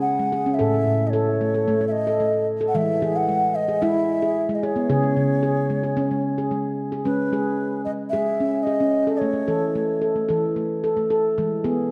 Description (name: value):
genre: world meditative, meditative tuned percussion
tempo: 112 BPM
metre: 4/4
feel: straight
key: C# minor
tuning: A4 = 440 Hz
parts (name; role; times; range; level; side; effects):
- mellow bansuri; melody; 0.0-10.0 s; B4 to F#5; -27 LUFS; equal; diffuse ambient delay
- handpan; arpeggios; 0.0-11.9 s; A2 to A4; -24 LUFS; equal; none
room: wet echo chamber reverb, RT60 1.8 s, small room reverb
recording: dark, warm production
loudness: -22 LUFS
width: mono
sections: 0.0-7.0 A section; 7.0-11.9 B section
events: none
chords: 0.0 C#5; 0.6 A; 2.7 E; 4.9 C#5; 7.0 C#m; 9.2 A; 11.4 E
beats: 0.06 | 0.59 1.13 1.67 2.21 | 2.75 3.28 3.82 4.36 | 4.90 5.43 5.97 6.51 | 7.05 7.59 8.13 8.67 | 9.21 9.75 10.29 10.83 | 11.37 11.91